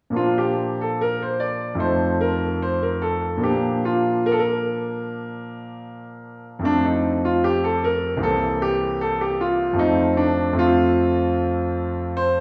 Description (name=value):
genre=classical, baroque-style suite movement for grand piano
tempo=75 BPM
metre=4/4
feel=rubato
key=Bb major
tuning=A4 = 441 Hz
part: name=bright concert grand piano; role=solo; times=0.1-12.4 s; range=C2 to D5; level=-22 LUFS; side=equal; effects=none
room=wet recital hall reverb, RT60 1.3 s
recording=heard from further back in the room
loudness=-21 LUFS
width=mono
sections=0.2-12.4 A section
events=none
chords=0.2 Bb; 1.8 F7; 3.4 Bb; 6.6 F; 8.2 C7; 9.8 F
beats=| 0.15 0.98 1.79 2.61 | 3.42 4.24 5.04 5.83 | 6.63 7.43 8.21 9.00 | 9.78 10.57 11.37 12.16